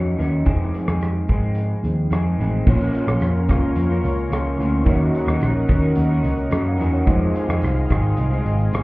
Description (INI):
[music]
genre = indie pop, bedroom pop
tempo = 109 BPM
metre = 4/4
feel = straight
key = Bb minor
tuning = A4 = 441 Hz
[part]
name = electric guitar through a small old amp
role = accompaniment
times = 0.0-8.8 s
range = F2 to Bb4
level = -24 LUFS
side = left 1 dB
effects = analog chorus, warbly pitch drift
[part]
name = mellow reed electric piano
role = accompaniment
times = 0.0-8.8 s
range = F3 to Bb5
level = -27 LUFS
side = right 1 dB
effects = fast tremolo, cassette tape
[part]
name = vintage muted picked electric bass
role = bass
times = 0.0-8.8 s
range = Ab1 to Ab2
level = -20 LUFS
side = equal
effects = none
[part]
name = loose indie drum kit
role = drums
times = 0.2-8.8 s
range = crash cymbal, hi-hat, kick drum, rim click, shaker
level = -22 LUFS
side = equal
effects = none
[part]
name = lush unison pad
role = sustained chords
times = 2.7-8.8 s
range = Ab4 to Db6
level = -31 LUFS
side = right 1 dB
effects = chorus
[part]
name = tambourine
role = percussion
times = 2.7-8.8 s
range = none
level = -66 LUFS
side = right 4 dB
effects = none
[sound]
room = studio reverb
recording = heard muffled through a wall, club reverb, EQ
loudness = -17 LUFS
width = side -21 dB against mid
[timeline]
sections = 0.0-2.7 A section; 2.7-8.8 B section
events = none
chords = 0.5 Fm7; 2.7 Bbm; 4.9 Ebm7; 7.1 Fm7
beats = | 0.47 1.02 1.57 2.12 | 2.67 3.22 3.77 4.32 | 4.87 5.42 5.97 6.52 | 7.07 7.62 8.18 8.73